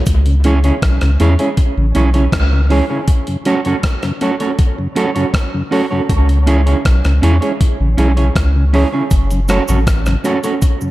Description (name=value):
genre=dub reggae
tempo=80 BPM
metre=4/4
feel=straight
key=C# minor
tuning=A4 = 441 Hz
part: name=soft dub sub bass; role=bass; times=0.0-10.2 s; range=F#1 to E2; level=-12 LUFS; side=equal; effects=none
part: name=dusty soul sampler-style drum kit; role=drums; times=0.1-10.8 s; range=hi-hat, kick drum, rim click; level=-17 LUFS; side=equal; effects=none
part: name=cabasa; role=percussion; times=0.1-0.2, 9.1-10.9 s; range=none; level=-31 LUFS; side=right 5 dB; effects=none
part: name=mellow tonewheel organ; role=accompaniment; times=0.3-10.9 s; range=F#2 to C#4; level=-21 LUFS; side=left 1 dB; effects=slow rotary speaker, dub echo
part: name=electric guitar at the edge of break-up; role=accompaniment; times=0.4-10.5 s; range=C#4 to C#5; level=-18 LUFS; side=right 3 dB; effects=spring reverb, dub echo
room=light reverb, digital ambience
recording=echo-heavy mix, faint mains hum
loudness=-12 LUFS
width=side -16 dB against mid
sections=0.1-10.9 A section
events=break 0.1-9.1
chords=0.1 C#m; 3.1 F#m; 6.1 C#m; 9.1 F#m